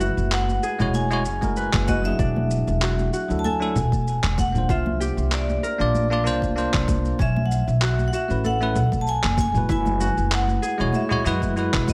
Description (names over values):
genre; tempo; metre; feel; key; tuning
sunset chillout; 96 BPM; 4/4; swing 54% on 16ths; unclear; A4 = 440 Hz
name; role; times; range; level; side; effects
vibraphone with hard mallets; melody; 0.0-11.9 s; D5 to A5; -30 LUFS; equal; tape echo
bell-like tine electric piano; accompaniment; 0.0-11.9 s; F#3 to D5; -29 LUFS; equal; none
concert harp; arpeggios; 0.0-11.9 s; C#4 to B4; -33 LUFS; equal; delay
upright bass; bass; 0.0-11.8 s; E1 to F#2; -26 LUFS; equal; none
electronic shaker, handclaps and congas; drums; 0.0-11.9 s; none; -31 LUFS; equal; none
congas; percussion; 0.5-11.9 s; none; -35 LUFS; equal; none
electronic kick drum; drums; 1.4-11.9 s; none; -28 LUFS; equal; none
room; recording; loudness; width
light reverb, small room ambience; none; -22 LUFS; mono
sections
0.0-11.9 A section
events
none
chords
0.0 F#9sus4; 2.2 E9sus4; 4.7 C9sus4; 7.2 B9sus4; 9.4 F#9sus4